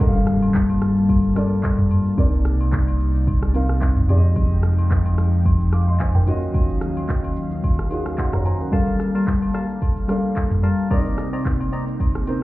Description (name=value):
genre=amapiano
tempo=110 BPM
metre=4/4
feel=swing 55% on 16ths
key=unclear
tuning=A4 = 439 Hz
part: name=dark grand piano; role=accompaniment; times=0.0-12.4 s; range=C3 to D6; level=-25 LUFS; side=equal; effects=none
part: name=airy breathy pad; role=sustained chords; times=0.0-12.4 s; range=C3 to A5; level=-26 LUFS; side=left 1 dB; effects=chorus, sidechain pumping
part: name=punchy sub bass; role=bass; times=0.0-8.7 s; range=C2 to G2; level=-20 LUFS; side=equal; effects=none
part: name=afro-pop drum kit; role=drums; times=0.0-12.4 s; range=handclaps, kick drum, rim click, shaker, toms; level=-21 LUFS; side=equal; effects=none
part: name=agogo bells and woodblock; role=percussion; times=0.0-12.4 s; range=none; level=-38 LUFS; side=left 1 dB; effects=none
part: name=impact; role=sound effects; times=0.0-2.2 s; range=none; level=-28 LUFS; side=equal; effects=none
part: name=percussive organ stab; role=stabs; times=8.7-11.9 s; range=G3 to Bb5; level=-27 LUFS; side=left 2 dB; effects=chorus, tape echo
room=little or no reverb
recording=heard muffled through a wall, club reverb, EQ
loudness=-17 LUFS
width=side -17 dB against mid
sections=0.0-12.4 A section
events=impact 0.0-2.2; grand piano fill 7.9-8.7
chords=0.0 Gm9; 2.2 Cm9; 4.1 Fm9; 6.3 Ebm9; 8.7 Gm9; 10.9 Cm9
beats=| 0.00 0.54 1.09 1.64 | 2.18 2.73 3.27 3.82 | 4.36 4.91 5.45 6.00 | 6.54 7.09 7.63 8.18 | 8.73 9.27 9.82 10.36 | 10.91 11.45 12.00